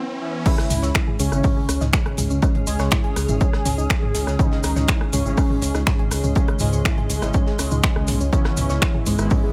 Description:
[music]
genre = melodic techno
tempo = 122 BPM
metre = 4/4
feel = straight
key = C# minor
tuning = A4 = 440 Hz
[part]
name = analog synth brass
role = stabs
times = 0.0-9.5 s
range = C#3 to E4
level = -31 LUFS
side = equal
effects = chorus, sidechain pumping, dub echo
[part]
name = riser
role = sound effects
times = 0.0-0.5 s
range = none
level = -34 LUFS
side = equal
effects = none
[part]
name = unison lead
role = melody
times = 0.5-9.5 s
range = G#3 to G#4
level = -32 LUFS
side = equal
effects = analog chorus, sidechain pumping, dub echo
[part]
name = glassy wavetable pluck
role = second line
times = 0.5-9.5 s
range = G#2 to G#3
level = -33 LUFS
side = equal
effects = none
[part]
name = soft round pluck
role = arpeggios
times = 0.5-9.5 s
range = G#3 to C#6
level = -33 LUFS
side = equal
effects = chorus, sidechain pumping, dub echo
[part]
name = electronic kick drum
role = drums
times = 0.5-9.4 s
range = none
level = -23 LUFS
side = equal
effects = overdrive
[part]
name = punchy analog drum machine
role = drums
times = 0.5-9.4 s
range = crash cymbal, finger snaps, hi-hat, rim click, toms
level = -28 LUFS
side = equal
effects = overdrive
[part]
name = tight metal drum kit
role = drums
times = 0.5-9.4 s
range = hi-hat, snare drum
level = -43 LUFS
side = equal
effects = none
[part]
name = cabasa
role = percussion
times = 0.5-9.4 s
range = none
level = -36 LUFS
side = equal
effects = none
[part]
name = granular cloud pad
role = texture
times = 1.7-9.5 s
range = C#4 to G#5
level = -38 LUFS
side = equal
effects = built-in reverb, sidechain pumping
[part]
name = swelling detuned saw bass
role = bass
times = 0.7-9.3 s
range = G#1 to C#2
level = -26 LUFS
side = equal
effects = sidechain pumping
[sound]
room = digital ambience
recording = none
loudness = -20 LUFS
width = mono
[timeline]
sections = 0.5-9.5 A section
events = break 0.0-0.5; riser 0.0-0.5; drop 0.5-9.5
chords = 0.5 C#m; 8.3 E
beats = | 0.46 0.95 1.44 1.93 | 2.42 2.92 3.41 3.90 | 4.39 4.88 5.38 5.87 | 6.36 6.85 7.34 7.83 | 8.33 8.82 9.31

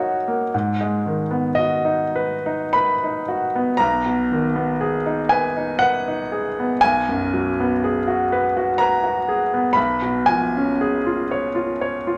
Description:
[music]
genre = classical, romantic nocturne for solo piano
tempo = 48-63 BPM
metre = 3/4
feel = rubato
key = unclear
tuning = A4 = 441 Hz
[part]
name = clear grand piano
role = solo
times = 0.0-12.2 s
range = Cb2 to Cb6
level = -21 LUFS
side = equal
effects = none
[sound]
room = wet large studio reverb, RT60 1.2 s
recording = none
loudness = -21 LUFS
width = mono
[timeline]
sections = 0.0-12.2 A section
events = none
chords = 0.0 Ebm/Gb; 0.5 Abm7; 3.8 Abm/Cb; 6.8 G#m7/B; 9.8 C#7/B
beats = | 0.53 1.58 2.76 | 3.80 4.80 5.81 | 6.83 7.83 8.79 | 9.77 10.81 11.83

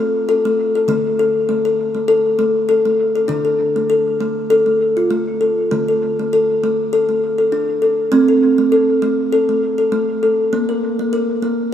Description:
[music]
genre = world meditative, meditative tuned percussion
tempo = 99 BPM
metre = 4/4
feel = swing 55% on 16ths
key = unclear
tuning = A4 = 441 Hz
[part]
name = kalimba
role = solo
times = 0.0-11.7 s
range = D3 to Bb4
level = -14 LUFS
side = left 1 dB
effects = dub echo
[sound]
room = wet plate reverb, RT60 2.7 s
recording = echo-heavy mix, studio ambience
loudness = -14 LUFS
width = side -10 dB against mid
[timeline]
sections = 0.0-3.3 A section; 3.3-11.7 B section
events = none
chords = 0.0 N.C.; 0.9 D5; 8.1 N.C.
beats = 0.27 | 0.88 1.49 2.09 2.70 | 3.30 3.91 4.51 5.11 | 5.72 6.32 6.92 7.53 | 8.13 8.73 9.34 9.94 | 10.54 11.14

